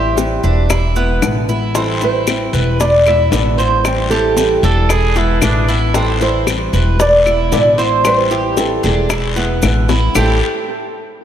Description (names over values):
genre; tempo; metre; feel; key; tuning
latin, Cuban son and guajira; 114 BPM; 4/4; straight; A minor; A4 = 440 Hz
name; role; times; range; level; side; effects
nylon-string guitar; melody; 0.0-10.4 s; G#4 to E5; -17 LUFS; right 1 dB; tape echo
nylon-string guitar; accompaniment; 0.0-10.4 s; A2 to E4; -22 LUFS; left 4 dB; none
Cuban tres; arpeggios; 0.0-10.4 s; A3 to C5; -20 LUFS; right 3 dB; none
upright bass; bass; 0.0-10.4 s; E1 to A1; -17 LUFS; equal; none
bongos; percussion; 0.2-10.3 s; none; -23 LUFS; left 6 dB; none
maracas; percussion; 0.2-10.3 s; none; -30 LUFS; right 7 dB; none
claves; percussion; 0.7-10.3 s; none; -26 LUFS; left 6 dB; none
guiro; percussion; 1.7-10.3 s; none; -26 LUFS; left 6 dB; none
clear trumpet; second line; 4.6-5.8, 10.2-10.4 s; C4 to A4; -22 LUFS; right 4 dB; tape echo
room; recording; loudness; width
wet lush hall reverb, RT60 2.5 s; dreamy mix soaked in reverb; -12 LUFS; side -10 dB against mid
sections
0.0-10.2 A section; 10.2-11.2 B section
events
drum fill 9.9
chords
0.0 Am7; 0.7 E7; 1.8 Am7; 2.8 E7; 3.8 Am7; 4.9 E7; 5.9 Am7; 7.0 E7; 8.1 Am7; 9.1 E7; 10.2 Am7